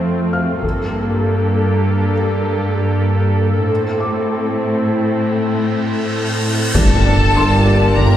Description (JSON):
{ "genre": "cinematic, hybrid orchestral and electronic film score", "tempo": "98 BPM", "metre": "5/4", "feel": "straight", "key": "G dorian", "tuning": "A4 = 440 Hz", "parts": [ { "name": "dark symphonic viola section", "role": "accompaniment", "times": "0.0-8.1 s", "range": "A3 to A4", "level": "-22 LUFS", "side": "equal", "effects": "none" }, { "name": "evolving wavetable pad", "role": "sustained chords", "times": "0.0-8.2 s", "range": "A3 to D5", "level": "-21 LUFS", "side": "left 1 dB", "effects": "chorus, built-in reverb" }, { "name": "warm symphonic cello section", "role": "bass", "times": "0.0-8.2 s", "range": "F2 to A2", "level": "-18 LUFS", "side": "right 1 dB", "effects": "none" }, { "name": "felt-muted upright piano", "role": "texture", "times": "0.0-8.2 s", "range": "F5 to F6", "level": "-28 LUFS", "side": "left 1 dB", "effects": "none" }, { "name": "taiko ensemble", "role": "drums", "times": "0.6-1.8, 6.8-8.2 s", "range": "none", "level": "-19 LUFS", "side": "left 1 dB", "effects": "none" }, { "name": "cymbal swell and impact", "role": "sound effects", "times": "5.5-8.2 s", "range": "none", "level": "-23 LUFS", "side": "equal", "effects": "none" }, { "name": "mellow French horn section", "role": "sustained chords", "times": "6.7-8.2 s", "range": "Bb3 to G4", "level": "-23 LUFS", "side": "left 1 dB", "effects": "none" }, { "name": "warm tuba", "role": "bass", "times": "6.7-8.2 s", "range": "G1", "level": "-22 LUFS", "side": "right 2 dB", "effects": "none" }, { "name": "rich symphonic violin section", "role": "melody", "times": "6.8-8.2 s", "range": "A5 to Bb5", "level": "-20 LUFS", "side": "left 2 dB", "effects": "none" }, { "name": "warm studio violin section", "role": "second line", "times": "6.8-8.2 s", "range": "A4 to Bb4", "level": "-22 LUFS", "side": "left 3 dB", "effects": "none" }, { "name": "warm trombone section", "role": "sustained chords", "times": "6.8-8.2 s", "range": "D3 to G3", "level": "-25 LUFS", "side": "right 3 dB", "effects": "none" }, { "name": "warm sub bass", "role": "bass", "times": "6.8-8.2 s", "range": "G1", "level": "-21 LUFS", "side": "equal", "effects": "none" }, { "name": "warm symphonic double bass section", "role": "bass", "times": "6.8-8.2 s", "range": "G1", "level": "-18 LUFS", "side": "right 1 dB", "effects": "none" } ], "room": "wet recital hall reverb, RT60 1.3 s", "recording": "recorded in a church or concert hall", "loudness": "-14 LUFS", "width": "side -11 dB against mid", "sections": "0.0-6.8 A section; 6.8-8.2 B section", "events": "build-up 0.0-6.8; cymbal swell 5.5-6.8; impact 6.8-8.2", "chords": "0.0 F; 0.6 Gmadd9; 3.7 Am; 6.8 Gmadd9" }